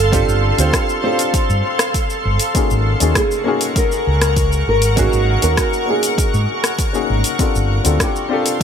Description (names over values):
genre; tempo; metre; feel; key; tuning
sunset chillout; 99 BPM; 4/4; straight; unclear; A4 = 440 Hz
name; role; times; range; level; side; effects
nylon-string guitar; melody; 0.0-8.6 s; Gb4 to C5; -22 LUFS; right 1 dB; digital delay
dark baby grand piano; accompaniment; 0.0-8.6 s; Bb3 to C5; -21 LUFS; moving between left 9 dB and right 7 dB; auto-pan, digital delay
shimmering ambient pad; sustained chords; 0.0-8.6 s; A4 to Db6; -22 LUFS; equal; chorus, built-in reverb
fretless electric bass; bass; 0.0-8.0 s; G1 to Ab2; -16 LUFS; equal; wide subtle chorus
electronic kick drum; drums; 0.1-8.6 s; none; -20 LUFS; equal; overdrive
smooth R&B drum kit; drums; 0.1-8.6 s; hi-hat, rim click, shaker; -21 LUFS; left 1 dB; none
room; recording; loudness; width
light reverb; none; -14 LUFS; side -8 dB against mid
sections
0.0-8.6 A section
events
none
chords
0.0 G9sus4; 2.6 Ab9sus4; 7.4 G9sus4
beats
| 0.13 0.73 1.34 1.95 | 2.55 3.16 3.77 4.37 | 4.98 5.58 6.19 6.80 | 7.40 8.01 8.61